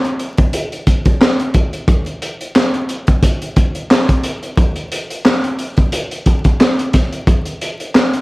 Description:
hip hop; 89 BPM; 4/4; swing 56% on 16ths
crunchy breakbeat drum kit; drums; 0.0-8.2 s; handclaps, hi-hat, kick drum, snare drum; -13 LUFS; equal
light reverb; vinyl crackle; -13 LUFS; side -22 dB against mid
0.0-7.3 A section

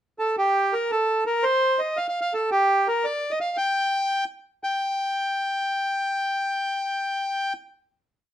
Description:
celtic folk; 112 BPM (dotted quarters); 6/8; straight; G minor; A4 = 441 Hz
accordion; solo; 0.2-7.5 s; G4 to G5; -22 LUFS; equal
moderate studio reverb, RT60 0.6 s; -22 LUFS; side -11 dB against mid
0.0-0.4 pickup bar; 0.4-4.6 A section; 4.6-6.8 final note

